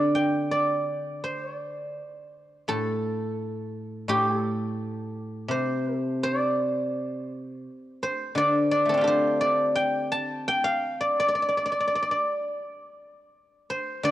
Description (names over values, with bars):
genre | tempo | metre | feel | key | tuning
chinese traditional, Chinese solo plucked strings | 84 BPM | 2/4 | rubato | D yu mode | A4 = 440 Hz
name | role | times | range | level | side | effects
guzheng | solo | 0.0-14.1 s | A2 to A5 | -24 LUFS | equal | cassette tape
room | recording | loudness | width
moderate lush hall reverb, RT60 2.5 s | home recording on cassette | -24 LUFS | side -14 dB against mid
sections
0.0-7.0 A section; 7.0-14.1 B section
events
none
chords
none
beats
0.53 | 1.26 1.98 | 2.69 3.40 | 4.10 4.79 | 5.50 6.22 | 6.95 7.67 | 8.36 9.05 | 9.74 10.45 | 11.16 11.89 | 12.62 13.34 | 14.05